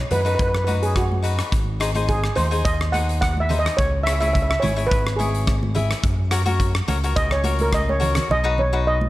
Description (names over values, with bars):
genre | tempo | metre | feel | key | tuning
calypso | 106 BPM | 4/4 | straight | B major | A4 = 440 Hz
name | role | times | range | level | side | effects
steel pan | melody | 0.0-9.1 s | F#4 to F#5 | -23 LUFS | right 2 dB | none
cavaquinho | accompaniment | 0.1-9.0 s | D#4 to E5 | -27 LUFS | left 4 dB | none
overdriven fingered electric bass | bass | 0.1-9.1 s | G#1 to F#2 | -22 LUFS | equal | none
huge arena drum kit | drums | 0.1-8.3 s | hi-hat, kick drum, rim click | -25 LUFS | equal | none
congas | percussion | 0.1-9.1 s | none | -30 LUFS | right 2 dB | none
room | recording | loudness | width
light reverb, small room ambience | none | -18 LUFS | side -16 dB against mid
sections
0.0-8.3 A section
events
steel pan solo 0.0-8.3; drum fill 7.6-8.3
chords
0.0 B; 1.5 G#; 3.8 C#m; 6.0 F#; 8.3 B